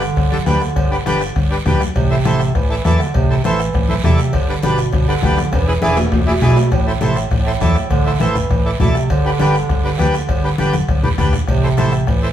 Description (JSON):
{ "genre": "latin, cumbia", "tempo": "202 BPM", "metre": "4/4", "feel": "straight", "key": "A minor", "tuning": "A4 = 440 Hz", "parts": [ { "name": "warm bass clarinet", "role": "second line", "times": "0.0-12.3 s", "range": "A2 to E3", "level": "-19 LUFS", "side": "right 3 dB", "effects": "none" }, { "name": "accordion", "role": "accompaniment", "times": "0.0-12.3 s", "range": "D4 to D5", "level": "-21 LUFS", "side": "equal", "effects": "none" }, { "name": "hollow-body short-scale fingered electric bass", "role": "bass", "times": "0.0-12.3 s", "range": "E1 to E2", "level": "-19 LUFS", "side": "equal", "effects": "none" }, { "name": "bombo", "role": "percussion", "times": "0.0-12.2 s", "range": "none", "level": "-20 LUFS", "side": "left 2 dB", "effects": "none" }, { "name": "guiro", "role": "percussion", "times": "0.0-12.3 s", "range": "none", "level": "-32 LUFS", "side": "right 4 dB", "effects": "none" }, { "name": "congas", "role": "percussion", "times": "0.2-12.2 s", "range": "none", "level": "-23 LUFS", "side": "left 2 dB", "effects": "none" }, { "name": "cowbell and timbales", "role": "percussion", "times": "0.2-12.2 s", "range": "none", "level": "-26 LUFS", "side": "right 1 dB", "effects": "none" } ], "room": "wet studio reverb, RT60 0.7 s", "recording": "heard from further back in the room", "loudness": "-13 LUFS", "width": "side -10 dB against mid", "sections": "0.0-6.7 A section; 6.7-12.3 B section", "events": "drum fill 5.5-6.7, 10.7-11.5", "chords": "0.0 G; 2.0 Am; 4.3 G; 5.5 E; 6.7 Am; 9.1 G; 11.5 Am" }